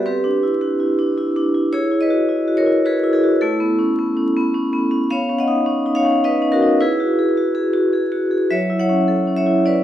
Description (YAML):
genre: classical, contemporary piece for solo vibraphone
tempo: 106 BPM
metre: 3/4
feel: rubato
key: unclear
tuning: A4 = 439 Hz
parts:
  - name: vibraphone with medium hard mallets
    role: solo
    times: 0.0-9.8 s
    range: F#3 to F#5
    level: -16 LUFS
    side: equal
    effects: none
room: moderate recital hall reverb, RT60 1.5 s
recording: vinyl crackle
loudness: -16 LUFS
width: side -11 dB against mid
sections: 0.0-9.8 A section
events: none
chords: 0.1 Cmaj9; 1.7 Emaj9; 3.4 Aadd9; 5.1 Badd9; 6.8 Eadd9; 8.5 F#m7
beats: | 0.06 0.62 1.18 | 1.74 2.30 2.86 | 3.42 3.99 4.55 | 5.10 5.67 6.23 | 6.80 7.37 7.93 | 8.51 9.08 9.66